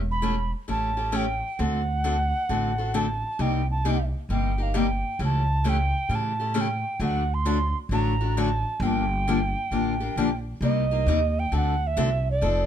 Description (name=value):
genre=acoustic string swing (jazz manouche)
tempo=133 BPM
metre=4/4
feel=swing 65% on 8ths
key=G minor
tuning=A4 = 438 Hz
part: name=upright bass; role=bass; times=0.0-12.7 s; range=E1 to A2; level=-26 LUFS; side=right 1 dB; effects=none
part: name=bright reedy alto ocarina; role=melody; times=0.1-12.7 s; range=D5 to C6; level=-28 LUFS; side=right 2 dB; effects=none
part: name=picked steel-string acoustic guitar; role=accompaniment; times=0.2-12.6 s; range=C3 to A4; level=-28 LUFS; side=left 4 dB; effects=none
room=light reverb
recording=dark, warm production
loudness=-23 LUFS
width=side -9 dB against mid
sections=0.0-10.6 A section; 10.6-12.7 B section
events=none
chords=0.0 A7/E; 1.6 D7; 3.4 Cm7; 5.2 A7/C#; 7.0 D; 8.8 Gm7; 10.6 Cm7; 11.5 D7